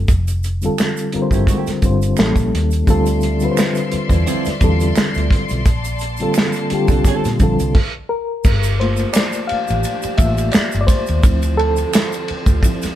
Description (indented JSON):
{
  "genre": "R&B, neo-soul",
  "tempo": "86 BPM",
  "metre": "4/4",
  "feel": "swing 54% on 16ths",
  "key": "G dorian",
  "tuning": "A4 = 440 Hz",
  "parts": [
    { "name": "mellow reed electric piano", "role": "accompaniment", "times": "0.0-13.0 s", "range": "D3 to F5", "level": "-19 LUFS", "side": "left 1 dB", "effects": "fast tremolo" },
    { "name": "vintage muted fingered electric bass", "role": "bass", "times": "0.0-12.9 s", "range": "F1 to Bb2", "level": "-19 LUFS", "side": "equal", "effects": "none" },
    { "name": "warm soul drum kit", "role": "drums", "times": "0.1-13.0 s", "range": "crash cymbal, finger snaps, hi-hat, kick drum, ride cymbal, snare drum", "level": "-17 LUFS", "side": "equal", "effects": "none" },
    { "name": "tube shaker and finger snaps", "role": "percussion", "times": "0.1-13.0 s", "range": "none", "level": "-30 LUFS", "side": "right 6 dB", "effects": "none" },
    { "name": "nylon-string guitar", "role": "second line", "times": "1.3-7.3 s", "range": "F3 to A4", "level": "-23 LUFS", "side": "right 6 dB", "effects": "none" },
    { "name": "warm studio string section", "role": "sustained chords", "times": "2.9-13.0 s", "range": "D3 to C6", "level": "-28 LUFS", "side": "equal", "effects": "none" }
  ],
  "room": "light reverb",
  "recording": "band playing live in one room",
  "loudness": "-14 LUFS",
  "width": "side -12 dB against mid",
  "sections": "0.0-8.4 A section; 8.4-13.0 B section",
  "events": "stop 7.8-8.4; reed electric piano solo 8.4-13.0",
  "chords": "0.1 Fadd9; 2.2 A7b9; 2.9 Dm9; 5.7 Bbmaj9; 8.4 Gm9; 11.2 Dm7"
}